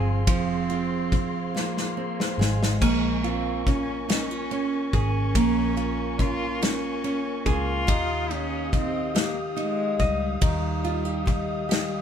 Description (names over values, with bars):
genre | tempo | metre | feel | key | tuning
six-eight pop ballad | 47 BPM (dotted quarters) | 6/8 | straight | unclear | A4 = 440 Hz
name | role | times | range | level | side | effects
dark cello | melody | 0.0-12.0 s | G3 to F4 | -31 LUFS | right 1 dB | digital delay
nylon-string guitar | accompaniment | 0.0-12.0 s | Eb3 to Eb5 | -28 LUFS | right 2 dB | none
percussive tonewheel organ | sustained chords | 0.0-12.0 s | G4 to Eb6 | -33 LUFS | left 3 dB | fast rotary speaker
vintage muted fingered electric bass | bass | 0.0-12.0 s | F1 to Eb2 | -29 LUFS | equal | none
loose indie drum kit | drums | 0.3-11.9 s | crash cymbal, kick drum, ride cymbal, snare drum | -26 LUFS | left 1 dB | none
room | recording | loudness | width
moderate studio ambience, RT60 0.5 s | band playing live in one room | -23 LUFS | side -8 dB against mid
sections
0.0-12.0 A section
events
drum fill 1.5-2.8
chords
0.0 Fm; 2.8 Bbm7; 7.9 Ebadd9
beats
| 0.28 1.55 | 2.82 4.09 | 5.36 6.62 | 7.88 9.15 | 10.42 11.70